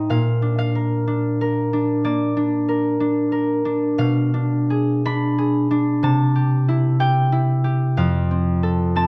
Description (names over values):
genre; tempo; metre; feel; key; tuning
classical, solo harp piece; 62 BPM; 4/4; rubato; unclear; A4 = 440 Hz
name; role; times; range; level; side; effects
concert harp; solo; 0.0-9.1 s; F2 to B5; -20 LUFS; equal; none
room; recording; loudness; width
light reverb; dark, warm production; -20 LUFS; mono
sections
0.0-9.1 A section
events
none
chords
0.1 Bb; 4.0 Bdim7; 6.0 C; 8.0 F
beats
| 0.10 1.07 2.04 2.99 | 3.98 5.05 6.03 7.00 | 7.97 8.96